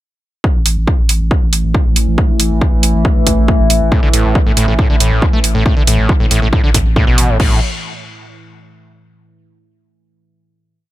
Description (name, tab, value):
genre	driving peak-time techno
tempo	138 BPM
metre	4/4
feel	straight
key	unclear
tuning	A4 = 441 Hz
part	analog drone	drone	1.1-7.4 s	A2 to E3	-20 LUFS	left 1 dB	chorus, sidechain pumping
part	electronic kick drum	drums	0.4-7.5 s	none	-13 LUFS	equal	none
part	saturated sub bass	bass	0.6-7.6 s	A1	-16 LUFS	equal	overdrive, sidechain pumping, low-pass filter
part	techno drum kit	drums	0.7-7.5 s	crash cymbal, hi-hat	-17 LUFS	right 2 dB	sidechain pumping on hats, sidechain pumping on cymbals
part	screaming distorted acid line	riff	3.9-7.6 s	A2 to C4	-17 LUFS	equal	distortion, chorus, sidechain pumping, ping-pong delay
room	little or no reverb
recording	none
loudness	-10 LUFS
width	side -15 dB against mid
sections	0.4-7.4 groove; 7.4-9.1 final note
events	none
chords	0.4 A5; 7.4 N.C.